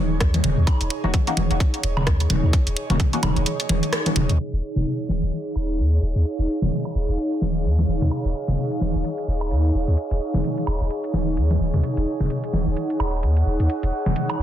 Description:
minimal techno; 129 BPM; 4/4; swing 58% on 16ths; Eb minor; A4 = 443 Hz
punchy sub bass; bass; 0.0-14.4 s; Eb1 to Eb2; -21 LUFS; equal; sidechain pumping
airy breathy pad; texture; 0.0-14.4 s; Eb4 to Gb5; -28 LUFS; right 2 dB; chorus, sidechain pumping
electronic kick drum; drums; 0.2-3.1 s; -20 LUFS; equal; overdrive
garage drum kit; drums; 0.2-14.4 s; hi-hat, rim click; -27 LUFS; right 1 dB; overdrive, low-pass filter on hats, low-pass filter on snare
electronic toms and woodblock; percussion; 0.3-14.4 s; -24 LUFS; equal; digital delay
filtered dub chord stab; stabs; 1.0-4.1 s; Bb3 to Gb4; -29 LUFS; left 3 dB; phaser, lush chorus, cassette tape, digital delay
moderate studio reverb, RT60 0.6 s; dense, heavily limited modern master, low-pass filter; -20 LUFS; side -11 dB against mid
0.0-4.4 A section; 4.4-14.4 B section
drop 0.0-4.4; kick drops out 3.5-4.4; band accent 3.9; filter sweep on drum 4.4-14.4; filter sweep 4.4-14.4
0.0 Eb7(no3); 4.4 Ebm7

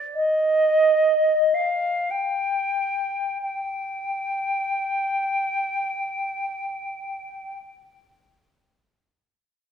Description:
classical, free, expressive piece for unaccompanied flute; free time; A4 = 440 Hz
silver concert flute; solo; 0.1-7.6 s; Eb5 to G5; -22 LUFS; equal
wet recital hall reverb, RT60 1.4 s; heard from further back in the room; -21 LUFS; side -7 dB against mid
0.0-3.4 A section; 3.4-6.8 B section
slowing down 0.0-3.4

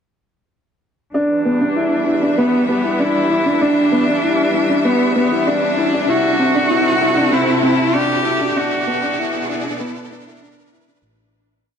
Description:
piano and strings electronica; 97 BPM; 4/4; straight; E minor; A4 = 440 Hz
bright cello; melody; 1.1-10.7 s; B3 to G4; -19 LUFS; equal; low-pass filter
clear studio string section; sustained chords; 1.1-11.0 s; B2 to E5; -23 LUFS; left 1 dB
warm upright piano; riff; 1.1-11.0 s; B3 to E4; -17 LUFS; equal
muted symphonic double bass section; bass; 1.1-11.0 s; A1 to G2; -32 LUFS; equal
riser; sound effects; 3.7-11.0 s; -26 LUFS; right 1 dB
moderate huge ambient reverb, RT60 4.4 s; dark, warm production; -14 LUFS; side -7 dB against mid
1.1-11.0 build
build-up 1.1-11.0; filter sweep on cello 1.1-11.0; riser 3.7-11.0; fade-out 7.7-11.0
1.1 Em7; 6.1 C6; 8.6 Bm7

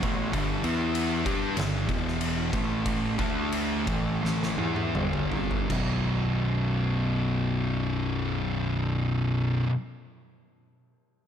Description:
stoner and doom metal; 77-98 BPM; 4/4; straight; B minor; A4 = 440 Hz
thick fuzz guitar; riff; 0.0-9.7 s; B1 to G4; -29 LUFS; left 6 dB; distortion
thick fuzz guitar; riff; 0.0-9.7 s; B1 to G4; -30 LUFS; right 7 dB; distortion
growling picked electric bass; bass; 0.0-9.6 s; B0 to G2; -33 LUFS; equal; overdrive
oversized low-tuned drum kit; drums; 0.0-5.9 s; crash cymbal, kick drum, ride cymbal, snare drum, toms; -32 LUFS; equal
light reverb, small room ambience; -25 LUFS; side -9 dB against mid
0.0-5.7 A section; 5.7-8.8 B section
slowing down 0.3-5.7; drum fill 4.2-5.7
0.3 G5; 0.6 E5; 1.3 G5; 1.9 E5; 2.5 A5; 3.2 D5; 3.9 G5; 5.7 B5

